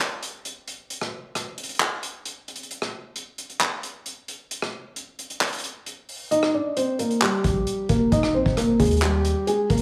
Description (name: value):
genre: hip hop, trap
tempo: 133 BPM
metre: 4/4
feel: half-time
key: Eb major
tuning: A4 = 436 Hz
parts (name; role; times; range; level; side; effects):
- vintage drum kit; drums; 0.0-9.8 s; handclaps, hi-hat, kick drum, rim click; -29 LUFS; equal; none
- felt-muted upright piano; melody; 6.3-9.8 s; G3 to Eb5; -24 LUFS; equal; tape echo
- hard-hitting 808-style bass; bass; 7.4-9.8 s; Eb1 to Eb2; -27 LUFS; equal; none
room: light reverb, studio ambience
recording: studio reverb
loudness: -24 LUFS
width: mono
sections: 0.0-9.8 A section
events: break 0.0-6.3; kick muted 6.3-7.2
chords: 0.0 N.C.; 6.3 Eb